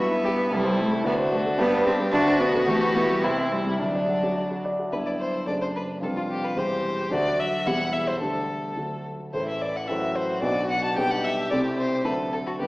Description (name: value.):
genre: quick classical-period movement for piano quartet.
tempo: 110 BPM.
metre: 2/4.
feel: rubato.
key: unclear.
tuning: A4 = 440 Hz.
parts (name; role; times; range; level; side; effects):
rich violin; melody; 0.0-12.7 s; D4 to A5; -27 LUFS; left 1 dB; none.
rich cello; second line; 0.0-12.7 s; E3 to D4; -28 LUFS; equal; none.
warm violin; second line; 0.0-12.7 s; D4 to E5; -31 LUFS; equal; none.
warm grand piano; accompaniment; 0.0-12.7 s; E1 to E5; -27 LUFS; equal; none.
room: wet recital hall reverb, RT60 1.7 s.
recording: heard from further back in the room, small speaker sound.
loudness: -22 LUFS.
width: side -20 dB against mid.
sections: 0.0-4.9 A section; 4.9-12.7 B section.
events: none.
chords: 0.0 Em/G; 0.5 Am7/C; 1.1 D7; 1.6 G; 2.1 D7; 2.7 Em; 3.2 C; 3.8 D; 4.9 G5; 5.5 D/F#; 6.0 G7/F; 6.6 C/E; 7.1 D; 7.7 Em; 8.2 Dsus4; 8.8 D; 9.3 A5; 9.9 F#dim/A; 10.4 Bm; 11.0 G/B; 11.5 Am/C; 12.0 D7.